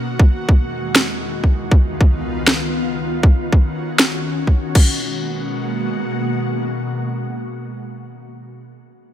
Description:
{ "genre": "future bass", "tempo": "158 BPM", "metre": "4/4", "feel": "swing 53% on 16ths, half-time", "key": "G# minor", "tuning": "A4 = 441 Hz", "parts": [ { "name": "ethereal airy pad", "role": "sustained chords", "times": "0.0-8.1 s", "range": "C#2 to F#4", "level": "-23 LUFS", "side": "left 1 dB", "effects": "ensemble chorus, built-in reverb, sidechain pumping" }, { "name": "electronic kick drum", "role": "drums", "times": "0.2-4.8 s", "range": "none", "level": "-12 LUFS", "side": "equal", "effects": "none" }, { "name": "trap drum kit", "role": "drums", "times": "1.0-4.8 s", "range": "crash cymbal, snare drum", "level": "-17 LUFS", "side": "equal", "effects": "none" } ], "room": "digital ambience", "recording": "none", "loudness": "-16 LUFS", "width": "side -11 dB against mid", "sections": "0.0-4.8 A section; 4.8-7.8 B section", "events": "none", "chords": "0.2 Emaj9; 1.5 C#9; 3.2 D#m7; 4.8 G#m9" }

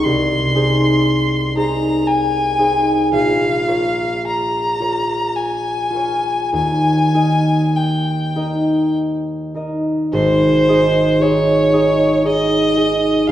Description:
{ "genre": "classical, romantic duo for violin and harp", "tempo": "49-60 BPM", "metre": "3/4", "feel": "rubato", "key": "Ab major", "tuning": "A4 = 440 Hz", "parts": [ { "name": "rich violin", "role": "melody", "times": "0.0-13.3 s", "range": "C5 to C6", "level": "-18 LUFS", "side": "left 1 dB", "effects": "none" }, { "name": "concert harp", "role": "accompaniment", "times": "0.0-13.3 s", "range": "Ab1 to Eb5", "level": "-16 LUFS", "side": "equal", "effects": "none" } ], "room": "wet recital hall reverb, RT60 1.4 s", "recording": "heard from further back in the room", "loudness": "-14 LUFS", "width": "side -12 dB against mid", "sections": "0.0-10.1 A section; 10.1-13.3 B section", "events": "none", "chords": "0.0 Ab/C; 3.1 Bbm; 6.5 Eb; 10.1 Ab" }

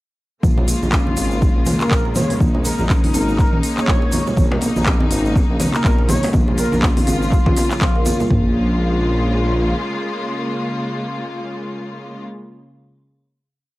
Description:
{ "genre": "afro house", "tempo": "122 BPM", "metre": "4/4", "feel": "swing 58% on 16ths", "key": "Bb minor", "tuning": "A4 = 440 Hz", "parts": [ { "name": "clear symphonic string section", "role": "sustained chords", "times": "0.4-12.2 s", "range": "Db3 to F4", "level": "-24 LUFS", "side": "left 1 dB", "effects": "sidechain pumping, cassette tape" }, { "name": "marimba with soft mallets", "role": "arpeggios", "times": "0.4-8.5 s", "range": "F3 to Bb4", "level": "-24 LUFS", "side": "left 1 dB", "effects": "sidechain pumping, cassette tape, analog delay" }, { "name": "dark detuned saw bass", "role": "bass", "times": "0.4-9.7 s", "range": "Ab1 to Bb1", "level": "-21 LUFS", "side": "equal", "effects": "tube saturation, sidechain pumping" }, { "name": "afro-pop drum kit", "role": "drums", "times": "0.4-8.2 s", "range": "handclaps, hi-hat, toms", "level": "-23 LUFS", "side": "equal", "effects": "cassette tape" }, { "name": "deep house drum kit", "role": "drums", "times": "0.4-8.4 s", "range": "kick drum, toms", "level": "-18 LUFS", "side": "equal", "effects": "cassette tape" }, { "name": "tube shaker", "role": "percussion", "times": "0.4-8.3 s", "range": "none", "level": "-32 LUFS", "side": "right 2 dB", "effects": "none" }, { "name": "congas", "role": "percussion", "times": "0.6-8.3 s", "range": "none", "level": "-26 LUFS", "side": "right 2 dB", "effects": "none" }, { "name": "expressive synth lead", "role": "melody", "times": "1.8-8.3 s", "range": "F4 to Db5", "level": "-26 LUFS", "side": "equal", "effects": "ensemble chorus, cassette tape, analog delay" }, { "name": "djembe", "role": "percussion", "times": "4.4-8.2 s", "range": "none", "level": "-26 LUFS", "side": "left 1 dB", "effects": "none" } ], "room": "small room ambience", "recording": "home recording on cassette", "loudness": "-15 LUFS", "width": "side -18 dB against mid", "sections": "0.4-8.3 drop; 8.3-12.2 final chord", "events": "drop 0.4-8.3", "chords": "0.4 Bbm7" }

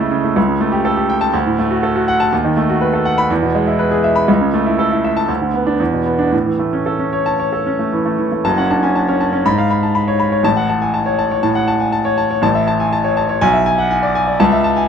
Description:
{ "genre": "classical, virtuoso piano study", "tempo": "121 BPM", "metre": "4/4", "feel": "rubato", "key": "A major, F# minor from 8.4 s", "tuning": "A4 = 440 Hz", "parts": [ { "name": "clear grand piano", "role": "solo", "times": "0.0-14.9 s", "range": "F#1 to B5", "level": "-13 LUFS", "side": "equal", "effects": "none" } ], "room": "moderate stone room reverb, RT60 1.0 s", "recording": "dark, warm production", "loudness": "-13 LUFS", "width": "side -7 dB against mid", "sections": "0.0-8.4 A section; 8.4-14.9 B section", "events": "none", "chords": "0.4 A7/C#; 1.3 D; 2.3 B7/D#; 3.3 E; 4.3 A/C#; 5.3 Bm/D; 5.8 E5; 6.3 A; 8.4 F#m; 9.4 C#7/G#; 10.4 F#m/A; 12.4 A; 13.4 E7/B" }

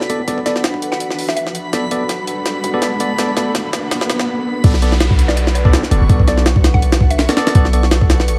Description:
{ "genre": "drum and bass, jungle", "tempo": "165 BPM", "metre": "4/4", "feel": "swing 55% on 16ths", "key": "B minor", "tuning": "A4 = 440 Hz", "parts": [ { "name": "mallet-like synth pluck", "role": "melody", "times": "0.0-1.4, 5.3-7.2 s", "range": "D5 to F#5", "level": "-28 LUFS", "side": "equal", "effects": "chorus, phaser, cassette tape, dub echo" }, { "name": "jungle sampler-style drum kit", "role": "drums", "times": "0.0-8.4 s", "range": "hi-hat, kick drum, snare drum", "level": "-17 LUFS", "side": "equal", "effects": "high-pass filter on snare, studio reverb, high-pass filter on hats, high-pass filter on kick" }, { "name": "riser and downlifter", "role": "sound effects", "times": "0.5-7.5 s", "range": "none", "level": "-30 LUFS", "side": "equal", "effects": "none" }, { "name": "backwards swelling texture", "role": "texture", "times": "0.0-8.4 s", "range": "B5 to C#6", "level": "-30 LUFS", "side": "equal", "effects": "built-in reverb" }, { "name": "bell-like tine electric piano", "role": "stabs", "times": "0.1-7.8 s", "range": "B3 to D5", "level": "-24 LUFS", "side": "equal", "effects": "vintage 12-bit sampler grit, low-pass filter, dub echo" }, { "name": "warm 808-style bass", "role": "bass", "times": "0.1-8.4 s", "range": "F#1 to E2", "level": "-18 LUFS", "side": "equal", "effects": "high-pass filter" } ], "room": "light reverb", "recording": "vinyl crackle", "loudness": "-15 LUFS", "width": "mono", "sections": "0.0-4.6 A section; 4.6-8.4 B section", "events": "build-up 0.0-4.6; riser 0.5-4.3; drum fill 1.7-4.3; drop 4.6-8.4", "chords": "0.0 Bm7" }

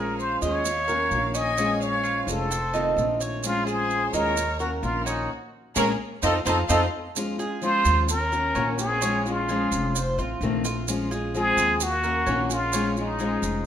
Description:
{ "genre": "latin, Cuban son and guajira", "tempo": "129 BPM", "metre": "4/4", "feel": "straight", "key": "Bb minor", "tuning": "A4 = 440 Hz", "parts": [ { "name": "trumpet with plunger mute", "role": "melody", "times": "0.0-13.7 s", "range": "Eb4 to Eb5", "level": "-25 LUFS", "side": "equal", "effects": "none" }, { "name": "clear studio violin section", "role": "second line", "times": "0.0-13.6 s", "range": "Ab3 to Ab5", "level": "-33 LUFS", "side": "equal", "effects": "none" }, { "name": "fingerpicked steel-string acoustic guitar", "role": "accompaniment", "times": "0.0-13.7 s", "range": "C3 to Gb4", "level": "-29 LUFS", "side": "left 3 dB", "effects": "none" }, { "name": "Cuban tres", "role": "arpeggios", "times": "0.0-13.6 s", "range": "Bb3 to Eb5", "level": "-31 LUFS", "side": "right 4 dB", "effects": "none" }, { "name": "upright bass", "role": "bass", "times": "0.0-13.7 s", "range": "F1 to F2", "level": "-30 LUFS", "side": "equal", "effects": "none" }, { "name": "maracas", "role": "percussion", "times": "0.2-13.7 s", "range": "none", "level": "-34 LUFS", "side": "right 7 dB", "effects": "none" } ], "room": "moderate large studio reverb, RT60 1.4 s", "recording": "minimal, uncompressed stereo recording", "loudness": "-22 LUFS", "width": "side -9 dB against mid", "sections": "0.0-7.2 A section; 7.2-13.7 B section", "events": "band accent 5.3-7.2", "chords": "0.0 Bbm7; 0.7 Ebm9; 1.6 Bbm7; 2.5 F7; 3.4 Bbm9; 4.4 Ebm7; 5.3 Bbm7; 6.2 F7; 7.2 Eb13sus4; 8.1 Ebm7; 9.0 Bbm7; 9.9 F7; 10.9 Bbm9; 11.8 Ebm7; 12.7 Bbm7" }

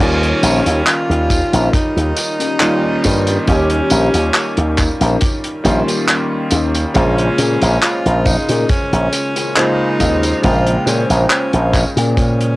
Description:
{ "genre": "vaporwave", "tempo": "69 BPM", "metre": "4/4", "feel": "swing 54% on 16ths", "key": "unclear", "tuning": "A4 = 439 Hz", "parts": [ { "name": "bright tenor saxophone", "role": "melody", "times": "0.0-12.6 s", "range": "Db4 to F4", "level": "-22 LUFS", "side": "equal", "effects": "cassette tape, tape echo" }, { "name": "warm electric grand piano", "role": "accompaniment", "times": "0.0-12.6 s", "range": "Db3 to G5", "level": "-19 LUFS", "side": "equal", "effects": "lush chorus, cassette tape" }, { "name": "slap bass with an envelope filter", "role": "bass", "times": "0.0-12.6 s", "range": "Bb1 to Bb2", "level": "-15 LUFS", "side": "equal", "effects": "none" }, { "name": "kick drum", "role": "drums", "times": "0.0-12.4 s", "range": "none", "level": "-18 LUFS", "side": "equal", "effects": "cassette tape" }, { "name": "warm soul drum kit", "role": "drums", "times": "0.0-12.6 s", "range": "handclaps, hi-hat, tambourine", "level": "-20 LUFS", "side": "equal", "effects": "cassette tape" }, { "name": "mellow electric guitar", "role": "riff", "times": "0.4-12.2 s", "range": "Db4 to Db5", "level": "-24 LUFS", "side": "left 5 dB", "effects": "analog chorus, cassette tape, analog delay" } ], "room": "light reverb", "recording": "home recording on cassette", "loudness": "-12 LUFS", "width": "side -19 dB against mid", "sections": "0.0-12.6 A section", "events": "none", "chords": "0.0 Eb7; 7.0 Bbm7" }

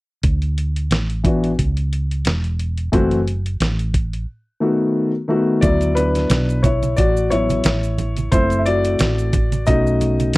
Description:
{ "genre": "hip hop, jazz-hop", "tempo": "89 BPM", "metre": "4/4", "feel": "swing 57% on 16ths", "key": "D major", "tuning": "A4 = 441 Hz", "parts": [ { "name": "woody fretless electric bass", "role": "bass", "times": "0.2-10.4 s", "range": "E1 to D2", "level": "-20 LUFS", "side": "equal", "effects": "none" }, { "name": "dusty soul sampler-style drum kit", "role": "drums", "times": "0.2-10.4 s", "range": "hi-hat, kick drum, snare drum", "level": "-20 LUFS", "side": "equal", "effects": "none" }, { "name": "dark grand piano", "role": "accompaniment", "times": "1.2-10.4 s", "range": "D#3 to E5", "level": "-18 LUFS", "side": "left 2 dB", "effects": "none" }, { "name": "maracas and congas", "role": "percussion", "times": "5.6-10.4 s", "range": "none", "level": "-27 LUFS", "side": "right 5 dB", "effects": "none" } ], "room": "little or no reverb", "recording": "dry, close 1970s-style studio recording", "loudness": "-16 LUFS", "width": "side -20 dB against mid", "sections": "0.2-5.6 A section; 5.6-10.4 B section", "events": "drums muted 4.3-5.6; grand piano solo 5.6-10.4", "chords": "0.2 Dsus2; 2.9 F#m7b5; 4.3 B7; 5.6 D69; 8.3 F#m7b5; 9.7 B7" }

